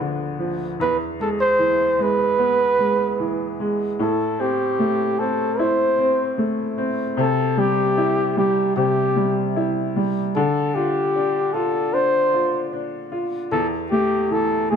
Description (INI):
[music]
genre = pop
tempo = 76 BPM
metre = 4/4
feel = straight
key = A minor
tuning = A4 = 439 Hz
[part]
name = bright upright piano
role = accompaniment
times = 0.0-14.8 s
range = D2 to F4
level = -22 LUFS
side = equal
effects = none
[part]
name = warm flugelhorn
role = melody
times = 0.8-14.8 s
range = G4 to C5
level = -20 LUFS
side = equal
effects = none
[sound]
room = moderate stone room reverb, RT60 1.2 s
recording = band playing live in one room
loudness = -18 LUFS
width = side -7 dB against mid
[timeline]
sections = 0.0-14.8 A section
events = none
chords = 0.0 Bdim/D; 0.8 E; 4.0 Am; 7.2 C; 10.4 Dm; 13.5 Esus4